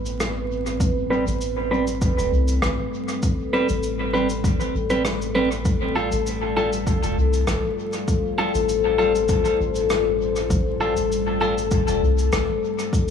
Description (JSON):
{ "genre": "ambient dub", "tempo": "99 BPM", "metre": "4/4", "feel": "swing 53% on 16ths", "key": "unclear", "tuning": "A4 = 440 Hz", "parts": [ { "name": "deep dark ambient pad", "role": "sustained chords", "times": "0.0-13.1 s", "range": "G3 to C5", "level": "-24 LUFS", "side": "left 5 dB", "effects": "chorus, built-in reverb" }, { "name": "soft dub sub bass", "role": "bass", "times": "0.0-12.5 s", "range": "E1 to C2", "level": "-25 LUFS", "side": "equal", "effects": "tube saturation" }, { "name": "cabasa and rim click", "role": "drums", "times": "0.1-13.1 s", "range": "none", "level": "-30 LUFS", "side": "equal", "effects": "dub echo" }, { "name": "electronic kick drum", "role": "drums", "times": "0.8-13.1 s", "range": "none", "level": "-24 LUFS", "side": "equal", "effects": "overdrive" }, { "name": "clean electric guitar", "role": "stabs", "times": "1.1-11.5 s", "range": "G3 to B4", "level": "-25 LUFS", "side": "right 2 dB", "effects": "low-pass filter, dub echo" } ], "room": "moderate spring reverb, RT60 2.5 s", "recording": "vinyl crackle, small room ambience", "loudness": "-19 LUFS", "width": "side -7 dB against mid", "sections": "0.0-13.1 A section", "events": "filter sweep on clean electric guitar 0.0-13.1", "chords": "0.0 Am9; 5.7 Fadd9" }